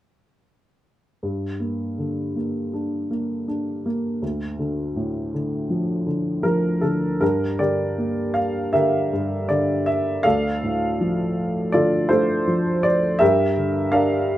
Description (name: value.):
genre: classical, lyrical solo piano.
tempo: 81 BPM.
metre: 4/4.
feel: rubato.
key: G dorian.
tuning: A4 = 440 Hz.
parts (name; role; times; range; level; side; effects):
dark upright piano; solo; 1.2-14.4 s; D2 to F5; -20 LUFS; equal; none.
room: little or no reverb.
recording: close, detailed microphones.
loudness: -20 LUFS.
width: side -13 dB against mid.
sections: 1.2-7.2 A section; 7.2-14.4 B section.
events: none.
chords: 1.2 Gm; 4.2 Dm; 7.2 Gm; 10.2 Dm; 13.2 Gm.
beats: | 1.23 1.98 2.73 3.48 | 4.22 4.96 5.70 6.44 | 7.21 7.98 8.74 9.50 | 10.25 10.99 11.73 12.47 | 13.21 13.93.